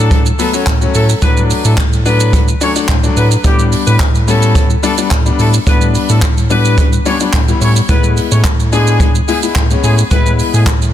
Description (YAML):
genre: dance-pop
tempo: 108 BPM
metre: 4/4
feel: straight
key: unclear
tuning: A4 = 439 Hz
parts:
  - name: warm horn section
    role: melody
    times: 0.0-10.6 s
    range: G3 to C#5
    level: -19 LUFS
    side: left 1 dB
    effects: ping-pong delay
  - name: clear grand piano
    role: accompaniment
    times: 0.0-10.7 s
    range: F#3 to E4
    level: -17 LUFS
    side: left 6 dB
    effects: sidechain pumping
  - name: round analog bass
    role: bass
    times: 0.0-10.9 s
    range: A2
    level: -13 LUFS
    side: equal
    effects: sidechain pumping
  - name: jazz brush drum kit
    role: drums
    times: 0.1-10.9 s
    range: handclaps, hi-hat, kick drum, shaker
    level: -13 LUFS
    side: right 1 dB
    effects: soft clipping on snare
room: small room ambience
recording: dense, heavily limited modern master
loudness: -9 LUFS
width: side -11 dB against mid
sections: 0.0-10.9 A section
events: none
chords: 0.0 D/A; 3.4 G/A; 7.9 E/A